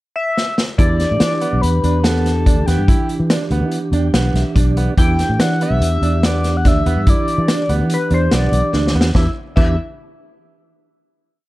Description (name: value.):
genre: progressive instrumental, band music in an uneven meter.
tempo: 144 BPM.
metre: 5/4.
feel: straight.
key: E minor.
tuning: A4 = 440 Hz.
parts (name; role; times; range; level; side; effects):
sync lead; melody; 0.2-9.8 s; G4 to G5; -21 LUFS; left 2 dB; chorus.
vintage drum kit; drums; 0.4-9.7 s; crash cymbal, hi-hat, kick drum, snare drum; -17 LUFS; equal; none.
percussive tonewheel organ; accompaniment; 0.8-9.8 s; E3 to G5; -23 LUFS; right 2 dB; fast rotary speaker.
bright concert grand piano; arpeggios; 0.8-9.8 s; B3 to E4; -25 LUFS; right 6 dB; none.
sustaining fretless electric bass; bass; 0.8-9.8 s; B1 to E3; -17 LUFS; equal; none.
room: studio reverb.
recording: dark, warm production.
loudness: -14 LUFS.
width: side -18 dB against mid.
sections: 0.0-0.8 pickup bar; 0.8-9.2 A section; 9.2-11.2 final chord.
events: drum fill 0.4-0.8, 8.7-9.2; tonewheel organ fill 3.7-5.0.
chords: 0.0 N.C.; 0.8 Em7.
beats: 0.37 | 0.79 1.21 1.62 2.04 2.46 | 2.88 3.30 3.72 4.14 4.55 | 4.97 5.39 5.81 6.23 6.65 | 7.07 7.48 7.90 8.32 8.73 | 9.15 9.57.